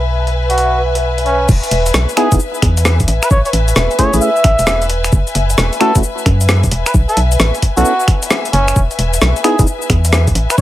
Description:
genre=UK garage, two-step garage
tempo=132 BPM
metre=4/4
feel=swing 65% on 16ths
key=unclear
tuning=A4 = 441 Hz
part: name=organ-like FM bass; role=bass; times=0.0-10.6 s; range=E1 to F#2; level=-14 LUFS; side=equal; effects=sidechain pumping
part: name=rich studio string section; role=texture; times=0.0-10.6 s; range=B4 to G#5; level=-20 LUFS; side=left 2 dB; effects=sidechain pumping
part: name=breakbeat sampler-style drum kit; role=drums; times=0.3-10.6 s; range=cabasa, crash cymbal, finger snaps, hi-hat, rim click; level=-17 LUFS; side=equal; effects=overdrive
part: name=trumpet with cup mute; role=melody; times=0.5-10.6 s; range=C#4 to E5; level=-18 LUFS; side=right 1 dB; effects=tape echo
part: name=electronic kick drum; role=drums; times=1.5-10.6 s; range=none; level=-13 LUFS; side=equal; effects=none
part: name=percussive organ stab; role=stabs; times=2.2-9.7 s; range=A3 to A4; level=-17 LUFS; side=equal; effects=chorus, tape echo
room=light reverb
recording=none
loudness=-11 LUFS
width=side -14 dB against mid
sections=0.0-1.5 A section; 1.5-10.6 B section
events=drop 1.5-10.6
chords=0.0 Bsus4; 1.5 Emaj7; 3.1 Amaj7; 5.1 F#m7; 6.9 B9sus4; 8.8 Emaj7

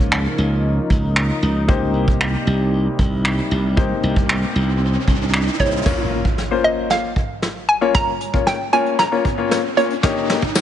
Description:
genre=dance-pop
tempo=115 BPM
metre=4/4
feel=straight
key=Bb dorian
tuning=A4 = 442 Hz
part: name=warm grand piano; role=accompaniment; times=0.0-10.4 s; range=Bb3 to Db5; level=-23 LUFS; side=left 7 dB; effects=sidechain pumping
part: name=sweeping resonant pad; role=sustained chords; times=0.0-5.8 s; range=C3 to Eb4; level=-26 LUFS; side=equal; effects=chorus, sidechain pumping
part: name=glassy slap bass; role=bass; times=0.0-5.8 s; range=C2 to Db2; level=-19 LUFS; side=right 1 dB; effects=sidechain pumping
part: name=vintage brush drum kit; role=drums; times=0.1-10.6 s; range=crash cymbal, finger snaps, hi-hat, kick drum, snare drum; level=-20 LUFS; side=equal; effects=none
part: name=riser and impact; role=sound effects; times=3.5-10.6 s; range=none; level=-27 LUFS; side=right 2 dB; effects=none
part: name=hollow square pluck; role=melody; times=5.6-10.6 s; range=Db5 to Bb5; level=-20 LUFS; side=right 2 dB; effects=chorus, tape echo
part: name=tambourine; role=percussion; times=10.6 s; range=none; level=-22 LUFS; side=left 11 dB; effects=none
room=light reverb, studio reverb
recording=high-pass filter, nothing above 10.4 kHz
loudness=-16 LUFS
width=side -10 dB against mid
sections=0.0-5.9 A section; 5.9-10.6 B section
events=riser 3.5-5.9, 5.9-10.6; build-up 5.9-10.6; drum fill 5.9-10.6; impact 5.9-7.9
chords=0.0 Bbm/Db; 1.7 Cm7; 5.9 Bbm; 10.0 Eb7

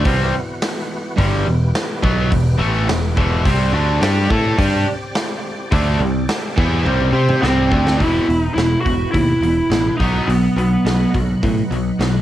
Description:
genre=hard rock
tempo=106 BPM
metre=4/4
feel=straight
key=E harmonic minor from 8.0 s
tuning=A4 = 440 Hz
part: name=overdriven tonewheel organ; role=sustained chords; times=0.0-12.2 s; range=E3 to G5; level=-30 LUFS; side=equal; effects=slow rotary speaker, chorus vibrato, cassette tape
part: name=cranked stack guitar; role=riff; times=0.0-12.2 s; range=E2 to C5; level=-22 LUFS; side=right 6 dB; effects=overdrive, cassette tape
part: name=overdriven electric guitar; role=riff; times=0.0-12.2 s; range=E2 to C5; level=-23 LUFS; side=left 7 dB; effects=cassette tape
part: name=modern bright picked electric bass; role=bass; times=0.0-12.2 s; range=E1 to C3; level=-19 LUFS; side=equal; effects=none
part: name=big rock drum kit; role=drums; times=0.0-12.1 s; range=hi-hat, kick drum, snare drum, toms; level=-22 LUFS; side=equal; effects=cassette tape
part: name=lead guitar through a small cranked amp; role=melody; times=7.4-11.1 s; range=B3 to F#4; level=-18 LUFS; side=equal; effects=overdrive, cassette tape
room=small room ambience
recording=home recording on cassette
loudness=-15 LUFS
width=side -13 dB against mid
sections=0.0-8.0 A section; 8.0-12.2 B section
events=drum fill 6.9-8.0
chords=0.0 Em; 3.4 C5; 8.0 Em; 10.0 B

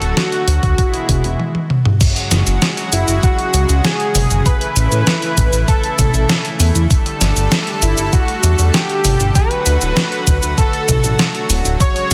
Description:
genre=synthwave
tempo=98 BPM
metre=4/4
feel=straight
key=F# minor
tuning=A4 = 440 Hz
part: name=soft supersaw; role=melody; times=0.0-12.1 s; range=E4 to C#5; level=-23 LUFS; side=equal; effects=cassette tape, digital delay
part: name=lush unison pad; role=sustained chords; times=0.0-12.1 s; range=B2 to A4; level=-26 LUFS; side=equal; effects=chorus, sidechain pumping
part: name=chorused synth bass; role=bass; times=0.0-12.1 s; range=D1 to A2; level=-18 LUFS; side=equal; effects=tube saturation
part: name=detuned 8-bit digital drum machine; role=drums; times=0.0-12.1 s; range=cabasa, crash cymbal, hi-hat, snare drum, toms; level=-20 LUFS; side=equal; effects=small room ambience
part: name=electronic kick drum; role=drums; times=0.6-11.9 s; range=none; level=-18 LUFS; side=equal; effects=small room ambience
part: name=soft synth bell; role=second line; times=2.9-12.1 s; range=E5 to C#6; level=-30 LUFS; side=equal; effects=chorus, phaser, digital delay
room=light reverb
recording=dense, heavily limited modern master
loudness=-15 LUFS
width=mono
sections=0.0-2.0 A section; 2.0-12.1 B section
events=drum fill 1.4-2.0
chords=0.0 D; 0.8 E; 2.0 F#sus2; 4.5 A; 6.9 Gsus2; 9.4 D

